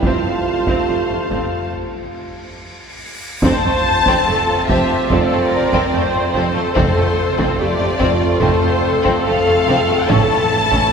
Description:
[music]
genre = cinematic, epic orchestral film score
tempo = 72 BPM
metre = 4/4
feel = straight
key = F major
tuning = A4 = 440 Hz
[part]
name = warm symphonic violin section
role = melody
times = 0.0-10.9 s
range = C5 to A5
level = -20 LUFS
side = left 3 dB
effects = none
[part]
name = warm symphonic violin section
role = second line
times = 0.0-10.9 s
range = A3 to A5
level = -23 LUFS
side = left 2 dB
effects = none
[part]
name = rich symphonic viola section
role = accompaniment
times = 0.0-10.9 s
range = F3 to C5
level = -22 LUFS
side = right 1 dB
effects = none
[part]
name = clear trombone section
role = sustained chords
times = 0.0-10.9 s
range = C3 to C4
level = -23 LUFS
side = right 1 dB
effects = none
[part]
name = dark French horn section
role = sustained chords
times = 0.0-10.9 s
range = C#3 to C5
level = -25 LUFS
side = right 1 dB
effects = none
[part]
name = warm studio double bass section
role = bass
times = 0.0-10.2 s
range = F1 to A1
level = -24 LUFS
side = right 2 dB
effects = none
[part]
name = warm symphonic cello section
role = bass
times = 0.0-10.8 s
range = F2 to A2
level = -24 LUFS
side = right 2 dB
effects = none
[part]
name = taiko ensemble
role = drums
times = 0.0-10.9 s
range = none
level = -23 LUFS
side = equal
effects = none
[part]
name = cymbal swell and sub drop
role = sound effects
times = 1.9-6.8 s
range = none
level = -32 LUFS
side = equal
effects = none
[sound]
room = wet cathedral reverb, RT60 4.7 s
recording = recorded in a church or concert hall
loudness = -14 LUFS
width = side -6 dB against mid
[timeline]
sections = 0.0-3.4 A section; 3.4-10.9 B section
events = break 1.7-3.4; cymbal swell 1.9-3.4; impact 3.4-6.8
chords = 0.0 F; 10.1 A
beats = | 0.04 0.90 1.75 2.59 | 3.44 4.27 5.10 5.93 | 6.76 7.59 8.42 9.27 | 10.10

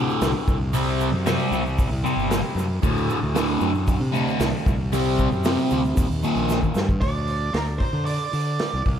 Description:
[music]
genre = psychedelic rock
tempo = 115 BPM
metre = 4/4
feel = straight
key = unclear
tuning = A4 = 440 Hz
[part]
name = fuzz guitar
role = riff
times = 0.0-6.6 s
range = D2 to C4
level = -23 LUFS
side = equal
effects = distortion, phaser, tape echo
[part]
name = fuzz fingered electric bass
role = bass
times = 0.0-9.0 s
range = G1 to D3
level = -25 LUFS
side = equal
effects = overdrive
[part]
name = egg shaker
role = percussion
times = 0.1-7.0 s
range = none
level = -42 LUFS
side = right 8 dB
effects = none
[part]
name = vintage drum kit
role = drums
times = 0.2-9.0 s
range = hi-hat, kick drum, snare drum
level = -26 LUFS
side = equal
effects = tape echo
[part]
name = octave-fuzz lead guitar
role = melody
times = 7.0-8.8 s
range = Bb4 to D5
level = -28 LUFS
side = right 4 dB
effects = distortion, tape echo
[sound]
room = light reverb, small room ambience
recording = echo-heavy mix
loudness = -20 LUFS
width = side -9 dB against mid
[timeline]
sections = 0.0-7.0 A section; 7.0-9.0 B section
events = drum fill 6.5-7.0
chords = 0.5 C5; 2.8 D; 4.7 C5; 6.0 Eb; 7.0 N.C.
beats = 0.22 | 0.74 1.26 1.79 2.31 | 2.83 3.36 3.88 4.40 | 4.93 5.45 5.97 6.50 | 7.02 7.55 8.07 8.60

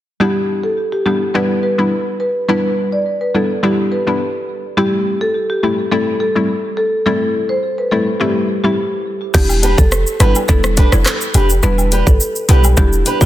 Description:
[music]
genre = dancehall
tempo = 105 BPM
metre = 4/4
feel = straight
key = E phrygian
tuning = A4 = 440 Hz
[part]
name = marimba with medium mallets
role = melody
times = 0.2-13.3 s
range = F4 to D5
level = -18 LUFS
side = equal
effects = tape echo
[part]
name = hollow square pluck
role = accompaniment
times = 0.2-13.3 s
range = G3 to E4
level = -18 LUFS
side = left 1 dB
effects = chorus, sidechain pumping
[part]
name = clean 808-style bass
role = bass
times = 9.3-13.0 s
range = E1 to B1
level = -13 LUFS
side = equal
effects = none
[part]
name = island pop drum kit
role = drums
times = 9.3-13.3 s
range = crash cymbal, handclaps, hi-hat, kick drum, rim click, shaker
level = -14 LUFS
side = equal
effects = none
[part]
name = woodblock and cabasa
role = percussion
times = 9.5-13.2 s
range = none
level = -29 LUFS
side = left 2 dB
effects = none
[part]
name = fingerpicked old ladder-braced acoustic guitar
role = arpeggios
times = 9.6-13.3 s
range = D4 to B4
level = -21 LUFS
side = right 2 dB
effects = none
[sound]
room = light reverb, digital ambience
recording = dense, heavily limited modern master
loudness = -13 LUFS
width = side -13 dB against mid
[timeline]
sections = 0.2-9.3 A section; 9.3-13.3 B section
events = none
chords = 0.2 Em7; 4.8 Am7; 9.3 Em7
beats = | 0.20 0.77 1.34 1.92 | 2.49 3.06 3.63 4.20 | 4.77 5.34 5.92 6.49 | 7.06 7.63 8.20 8.77 | 9.35 9.92 10.49 11.06 | 11.63 12.20 12.77

